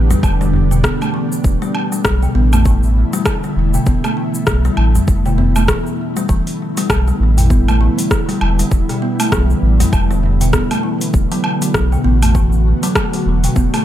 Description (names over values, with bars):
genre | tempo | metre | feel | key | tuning
organic downtempo | 99 BPM | 4/4 | swing 59% on 16ths | unclear | A4 = 440 Hz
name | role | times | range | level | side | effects
ethereal airy pad | sustained chords | 0.0-13.8 s | D3 to G4 | -21 LUFS | equal | ensemble chorus, built-in reverb, sidechain pumping
warm sub bass | bass | 0.0-13.7 s | E1 to B1 | -14 LUFS | equal | sidechain pumping
kalimba | arpeggios | 0.1-13.8 s | B2 to B3 | -20 LUFS | equal | tape echo
deep house drum kit | drums | 0.1-13.8 s | hi-hat, rim click, shaker, woodblock | -21 LUFS | equal | overdrive
darbuka | percussion | 0.1-13.8 s | none | -25 LUFS | left 1 dB | none
electronic kick drum | drums | 0.2-13.7 s | none | -17 LUFS | equal | overdrive
room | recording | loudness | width
digital ambience | none | -13 LUFS | side -12 dB against mid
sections
0.0-13.8 A section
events
none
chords
0.0 G69/E; 11.1 D6/E